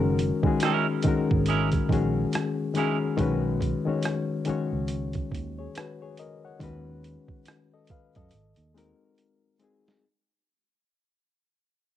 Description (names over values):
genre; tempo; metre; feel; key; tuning
R&B, neo-soul; 70 BPM; 4/4; swing 59% on 16ths; unclear; A4 = 439 Hz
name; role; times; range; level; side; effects
bright reed electric piano; accompaniment; 0.0-10.1 s; D#3 to F#5; -27 LUFS; left 4 dB; cassette tape
vintage muted fingered electric bass; bass; 0.0-8.9 s; F#1 to F#2; -30 LUFS; right 2 dB; none
boom bap sampler-style drum kit; drums; 0.2-10.0 s; hi-hat, kick drum, rim click, snare drum; -29 LUFS; right 2 dB; cassette tape
clean electric guitar; second line; 0.6-3.0 s; G#3 to A#4; -30 LUFS; right 9 dB; spring reverb, cassette tape
room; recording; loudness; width
moderate studio reverb, RT60 0.6 s; home recording on cassette; -24 LUFS; side -11 dB against mid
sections
0.0-10.0 A section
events
fade-out 0.0-10.0; drum fill 8.3-10.0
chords
0.0 F#add9; 3.2 B; 6.6 B13/D#; 8.3 G#7